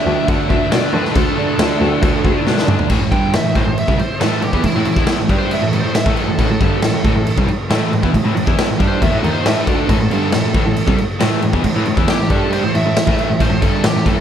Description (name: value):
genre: hard rock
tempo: 137 BPM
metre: 4/4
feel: straight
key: unclear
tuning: A4 = 439 Hz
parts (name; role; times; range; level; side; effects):
- biting lead guitar; melody; 0.0-14.2 s; E4 to G5; -23 LUFS; right 1 dB; overdrive
- distorted electric guitar; riff; 0.0-14.2 s; G2 to G4; -24 LUFS; left 11 dB; overdrive
- overdriven semi-hollow guitar; riff; 0.0-14.2 s; G2 to G4; -21 LUFS; right 10 dB; none
- overdriven semi-hollow guitar; riff; 0.0-14.2 s; G2 to G4; -24 LUFS; left 1 dB; none
- rich cello; bass; 0.1-14.2 s; C2 to D3; -21 LUFS; equal; none
- raw garage drum kit; drums; 0.3-14.2 s; crash cymbal, kick drum, snare drum, toms; -17 LUFS; left 1 dB; none
room: small room ambience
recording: none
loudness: -13 LUFS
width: side -9 dB against mid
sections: 0.0-2.9 A section; 2.9-14.2 B section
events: drum fill 2.5-2.9; lead electric guitar solo 2.9-14.2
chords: 0.0 D5; 2.9 A5